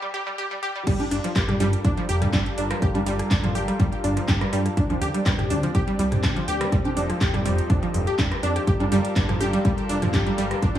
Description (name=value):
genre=progressive house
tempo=123 BPM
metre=4/4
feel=straight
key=G minor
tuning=A4 = 440 Hz
part: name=wide unison pluck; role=arpeggios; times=0.0-10.8 s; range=G2 to G4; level=-25 LUFS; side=equal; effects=sidechain pumping, tape echo
part: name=lush unison pad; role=sustained chords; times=0.9-10.8 s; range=F3 to Bb4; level=-31 LUFS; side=left 1 dB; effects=chorus, sidechain pumping
part: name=plucky analog bass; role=bass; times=0.9-10.8 s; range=F1 to G2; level=-27 LUFS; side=equal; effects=sidechain pumping
part: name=electronic kick drum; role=drums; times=0.9-10.7 s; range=none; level=-23 LUFS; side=equal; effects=high-pass filter on kick
part: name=house drum kit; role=drums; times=0.9-10.8 s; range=crash cymbal, handclaps, hi-hat, rim click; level=-32 LUFS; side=equal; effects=sidechain pumping on hats, sidechain pumping on cymbals
part: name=punchy analog drum machine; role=percussion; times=1.0-10.8 s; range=congas, rim click, toms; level=-28 LUFS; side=right 1 dB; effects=sidechain pumping on perc, sidechain pumping on snare, sidechain pumping on toms
room=light reverb, digital ambience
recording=high-pass filter, small room ambience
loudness=-20 LUFS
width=side -11 dB against mid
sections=0.9-10.8 A section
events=break 0.0-0.9; drop 0.9-10.8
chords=0.0 N.C.; 0.9 Gm7; 4.8 D7sus4; 6.7 F7; 8.7 Gm7